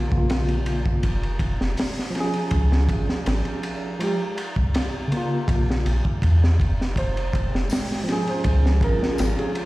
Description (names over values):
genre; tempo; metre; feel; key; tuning
trip hop; 81 BPM; 4/4; straight; F minor; A4 = 444 Hz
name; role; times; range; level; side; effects
tine electric piano; accompaniment; 0.0-9.7 s; Db3 to Ab4; -27 LUFS; equal; harmonic tremolo, low-pass filter, tape echo
soft dub sub bass; bass; 0.0-9.4 s; F1 to E2; -22 LUFS; equal; none
crunchy breakbeat drum kit; drums; 0.1-9.7 s; hi-hat, kick drum, ride cymbal, snare drum; -25 LUFS; equal; none
felt-muted upright piano; melody; 7.0-9.7 s; Ab4 to C5; -30 LUFS; right 2 dB; dub echo
dark analog pad; sustained chords; 7.3-9.7 s; Ab3 to G5; -31 LUFS; left 1 dB; chorus, vintage 12-bit sampler grit
tambourine; percussion; 7.7-9.3 s; none; -41 LUFS; left 2 dB; none
room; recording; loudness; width
studio reverb; played on a big sound system in a bare room, stone room reverb, vinyl crackle; -20 LUFS; side -18 dB against mid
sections
0.0-9.7 A section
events
none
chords
0.0 Bbm; 1.0 Fm; 2.5 Db; 4.0 Fmadd9; 5.5 Bbm; 7.0 Fmadd9; 8.4 Db